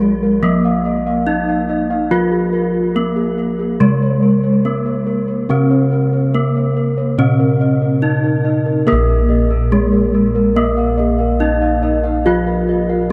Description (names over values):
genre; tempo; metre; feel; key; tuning
Javanese gamelan; 71 BPM; 4/4; straight; Bb slendro; A4 = 441 Hz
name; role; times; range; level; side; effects
gamelan-type bronze metallophone; melody; 0.0-13.1 s; Ab3-40c to F4+20c; -20 LUFS; equal; digital delay
gamelan-type bronze metallophone; accompaniment; 0.0-13.1 s; C3+40c to Bb3; -22 LUFS; equal; none
gamelan-type bossed gongs; arpeggios; 0.0-13.1 s; Ab4-40c to F5+20c; -24 LUFS; equal; none
gamelan-type bossed gongs; bass; 0.0-13.1 s; Bb1 to Bb4; -21 LUFS; equal; none
gamelan-type bronze metallophone; arpeggios; 8.9-13.1 s; Ab4-40c to F5+20c; -25 LUFS; equal; none
room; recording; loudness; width
moderate huge ambient reverb, RT60 8.0 s; dreamy mix soaked in reverb; -16 LUFS; mono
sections
0.0-8.9 A section; 8.9-13.1 A section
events
none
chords
none